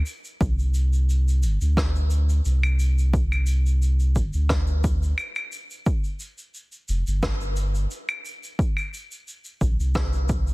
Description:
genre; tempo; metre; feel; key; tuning
sunset chillout; 88 BPM; 4/4; straight; unclear; A4 = 439 Hz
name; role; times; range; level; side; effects
warm sub bass; bass; 0.0-10.5 s; F1 to D2; -21 LUFS; equal; none
shaker, rim click and claves; drums; 0.1-10.5 s; none; -32 LUFS; equal; none
electronic kick drum; drums; 0.4-10.4 s; none; -25 LUFS; equal; overdrive
room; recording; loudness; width
little or no reverb; dense, heavily limited modern master; -21 LUFS; side -23 dB against mid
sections
0.0-10.5 A section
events
none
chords
none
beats
| 0.41 1.09 1.77 2.45 | 3.13 3.82 4.50 5.18 | 5.86 6.54 7.22 7.91 | 8.59 9.27 9.95

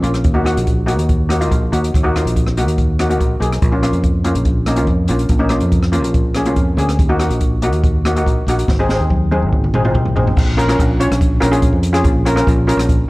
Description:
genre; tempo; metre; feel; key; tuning
calypso; 142 BPM; 4/4; straight; Bb minor; A4 = 440 Hz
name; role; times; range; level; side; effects
steel pan; accompaniment; 0.0-12.9 s; Bb3 to Db5; -18 LUFS; equal; none
fingered electric bass; bass; 0.0-13.1 s; Ab1 to F2; -17 LUFS; equal; none
open jazz drum kit; drums; 0.0-13.0 s; crash cymbal, hi-hat, kick drum, rim click, snare drum, toms; -17 LUFS; equal; none
room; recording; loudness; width
light reverb; worn, warbling old tape, cassette tape, warbly pitch drift; -13 LUFS; side -21 dB against mid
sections
0.0-10.4 A section; 10.4-13.1 B section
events
drum fill 8.7-10.4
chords
0.2 Ebm; 3.6 Bbm; 7.0 Ebm; 8.7 Ab; 10.4 Bbm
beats
| 0.25 0.67 1.09 1.51 | 1.93 2.36 2.78 3.20 | 3.62 4.04 4.46 4.88 | 5.31 5.73 6.15 6.57 | 6.99 7.41 7.83 8.26 | 8.68 9.10 9.52 9.94 | 10.36 10.78 11.21 11.63 | 12.05 12.47 12.89

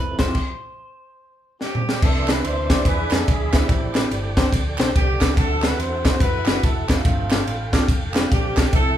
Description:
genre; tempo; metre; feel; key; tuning
uptempo gospel; 143 BPM; 4/4; swing 62% on 8ths; unclear; A4 = 440 Hz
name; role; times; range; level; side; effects
clean electric guitar; melody; 0.0-1.6 s; B4 to C5; -32 LUFS; equal; none
tonewheel organ; sustained chords; 0.0-9.0 s; F3 to C6; -32 LUFS; right 3 dB; slow rotary speaker, chorus vibrato
hollow-body short-scale fingered electric bass; bass; 0.0-9.0 s; F1 to F#2; -26 LUFS; equal; none
bright grand piano; accompaniment; 0.2-9.0 s; G2 to D5; -27 LUFS; left 1 dB; none
crisp fusion drum kit; drums; 0.2-8.9 s; crash cymbal, hi-hat, kick drum, ride cymbal, snare drum, toms; -19 LUFS; equal; none
mellow horn section; melody; 1.6-9.0 s; G3 to C5; -25 LUFS; right 1 dB; none
group handclap; percussion; 2.3-8.6 s; none; -33 LUFS; right 4 dB; none
room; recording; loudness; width
moderate large studio reverb, RT60 0.8 s; band playing live in one room; -18 LUFS; side -11 dB against mid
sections
0.0-2.0 A section; 2.0-9.0 B section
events
stop 0.3-2.0; drum fill 1.6-2.0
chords
0.3 Gsus4; 2.0 Cmaj9; 2.9 E7; 3.7 Am11; 5.4 D13; 7.0 G9sus4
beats
| 0.35 0.77 1.19 1.61 | 2.02 2.44 2.86 3.28 | 3.70 4.12 4.53 4.95 | 5.37 5.79 6.21 6.63 | 7.05 7.47 7.89 8.31 | 8.73

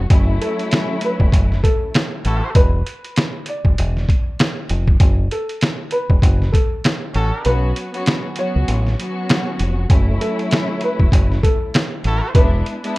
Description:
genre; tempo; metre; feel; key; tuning
hip hop, boom-bap hip-hop; 98 BPM; 4/4; swing 59% on 16ths; F# minor; A4 = 440 Hz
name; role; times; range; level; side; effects
muted studio string section; accompaniment; 0.0-2.2, 7.4-13.0 s; F#3 to F#4; -24 LUFS; left 1 dB; cassette tape, high-pass filter, low-pass filter
deep dub fingered electric bass; bass; 0.0-12.6 s; E1 to C#2; -18 LUFS; equal; none
trip hop sampler-style drum kit; drums; 0.1-13.0 s; hi-hat, kick drum, snare drum; -16 LUFS; equal; none
dark upright piano; melody; 0.4-13.0 s; A4 to D5; -24 LUFS; equal; high-pass filter, low-pass filter, slapback echo
clear trumpet section; stabs; 2.3-2.5, 7.1-7.6, 12.0-12.3 s; C#4 to A4; -25 LUFS; right 1 dB; high-pass filter, low-pass filter, slapback echo
room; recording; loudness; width
small room ambience; rough home demo mix; -15 LUFS; side -20 dB against mid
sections
0.1-13.0 A section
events
break 7.5-9.9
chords
0.1 F#m7; 2.6 E5; 5.0 F#m; 7.5 Bsus2; 9.9 F#m7; 12.3 E7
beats
| 0.10 0.72 1.33 1.94 | 2.55 3.17 3.78 4.39 | 5.00 5.61 6.23 6.84 | 7.45 8.06 8.68 9.29 | 9.90 10.51 11.12 11.74 | 12.35 12.96

